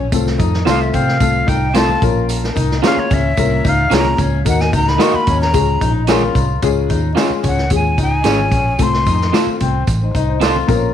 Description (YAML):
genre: uptempo 1960s-style soul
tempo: 111 BPM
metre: 4/4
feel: straight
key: Db major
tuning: A4 = 440 Hz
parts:
  - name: electric guitar through a small old amp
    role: riff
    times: 0.0-10.9 s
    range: C4 to F4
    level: -24 LUFS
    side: left 8 dB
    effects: none
  - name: vintage muted fingered electric bass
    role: bass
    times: 0.0-10.9 s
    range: Ab1 to C3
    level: -18 LUFS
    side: equal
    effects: none
  - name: dark upright piano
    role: accompaniment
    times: 0.1-10.9 s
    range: Ab3 to Eb5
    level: -20 LUFS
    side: left 8 dB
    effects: none
  - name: vintage drum kit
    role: drums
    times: 0.1-10.8 s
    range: hi-hat, kick drum, snare drum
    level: -20 LUFS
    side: right 1 dB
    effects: none
  - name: tambourine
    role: percussion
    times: 0.1-10.8 s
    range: none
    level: -34 LUFS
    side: right 14 dB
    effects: none
  - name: congas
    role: percussion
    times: 0.3-10.8 s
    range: none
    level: -31 LUFS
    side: right 9 dB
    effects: none
  - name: breathy bright jazz flute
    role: melody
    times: 0.7-9.4 s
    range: Db5 to Db6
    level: -20 LUFS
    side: left 1 dB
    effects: tape echo
  - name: electric guitar through a small old amp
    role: stabs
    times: 0.7-10.6 s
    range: C4 to Eb5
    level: -21 LUFS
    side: right 11 dB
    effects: none
room: light reverb, small room ambience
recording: 1960s-style stereo with parts hard left and right, vinyl crackle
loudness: -13 LUFS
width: side -9 dB against mid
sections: 0.0-6.6 A section; 6.6-10.9 B section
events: flute solo 0.0-6.6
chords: 0.1 F/C; 2.0 Bbm; 4.5 Ebm; 5.5 Db; 8.8 F/C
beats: | 0.12 0.66 1.21 1.75 | 2.29 2.83 3.38 3.92 | 4.46 5.00 5.54 6.09 | 6.63 7.17 7.71 8.26 | 8.80 9.34 9.88 10.42